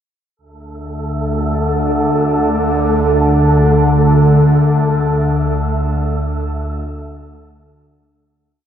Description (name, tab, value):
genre	dark ambient drone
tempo	free time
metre	none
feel	none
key	unclear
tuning	A4 = 440 Hz
part	organ-like drone	drone	0.9-8.5 s	D2 to D3	-14 LUFS	equal	ensemble chorus, built-in reverb
part	wind-like tuned noise texture	texture	0.9-8.4 s	A3 to A4	-19 LUFS	right 1 dB	built-in reverb, shimmer reverb
room	wet huge ambient reverb, RT60 8.5 s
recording	none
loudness	-12 LUFS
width	side -9 dB against mid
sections	0.4-8.4 A section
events	fade-out 4.4-8.4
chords	0.4 D5